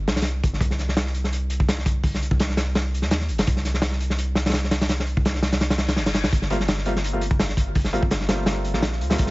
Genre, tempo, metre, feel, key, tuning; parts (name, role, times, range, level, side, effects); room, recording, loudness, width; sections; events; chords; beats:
drum and bass, jungle; 168 BPM; 4/4; swing 53% on 16ths; G minor; A4 = 439 Hz
long sustained 808-style bass; bass; 0.0-9.3 s; G1 to Eb2; -25 LUFS; equal
crunchy breakbeat drum kit; drums; 0.1-9.3 s; hi-hat, kick drum, snare drum; -22 LUFS; equal
reverse cymbal; sound effects; 5.8-6.3 s; -36 LUFS; left 5 dB
warm grand piano; stabs; 6.5-9.3 s; G3 to F4; -27 LUFS; equal; dub echo
small room ambience; vinyl crackle, nothing above 7.7 kHz; -20 LUFS; side -21 dB against mid
0.0-9.3 A section
reverse cymbal 5.8-6.3
0.0 Gsus4; 0.6 N.C.; 6.3 Gm11
0.25 | 0.61 0.97 1.32 1.68 | 2.04 2.40 2.75 3.11 | 3.47 3.83 4.18 4.54 | 4.90 5.25 5.61 5.97 | 6.33 6.68 7.04 7.40 | 7.75 8.11 8.47 8.82 | 9.18